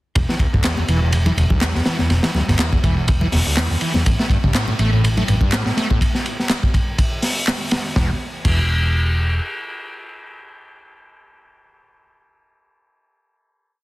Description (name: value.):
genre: breakbeat, breaks.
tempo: 123 BPM.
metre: 4/4.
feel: swing 56% on 16ths.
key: E minor.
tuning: A4 = 439 Hz.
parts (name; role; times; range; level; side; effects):
screaming distorted acid line; riff; 0.2-8.6 s; D2 to A3; -22 LUFS; equal; distortion, analog chorus, cassette tape, tape echo.
hollow-body short-scale picked electric bass; bass; 0.2-9.4 s; E1 to C#2; -18 LUFS; equal; none.
crunchy breakbeat drum kit; drums; 0.2-8.6 s; crash cymbal, hi-hat, kick drum, ride cymbal, snare drum; -19 LUFS; equal; none.
electronic handclaps; drums; 0.6-7.6 s; none; -27 LUFS; equal; none.
congas; percussion; 0.8-6.0 s; none; -27 LUFS; left 2 dB; none.
room: studio reverb.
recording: dense, heavily limited modern master.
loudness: -16 LUFS.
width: side -18 dB against mid.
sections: 0.2-8.0 groove; 8.0-11.9 final note.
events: none.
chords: 0.2 E7(no3); 4.1 N.C..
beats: | 0.16 0.64 1.13 1.62 | 2.11 2.60 3.08 3.57 | 4.06 4.55 5.03 5.52 | 6.01 6.50 6.99 7.47 | 7.96 8.45 8.94.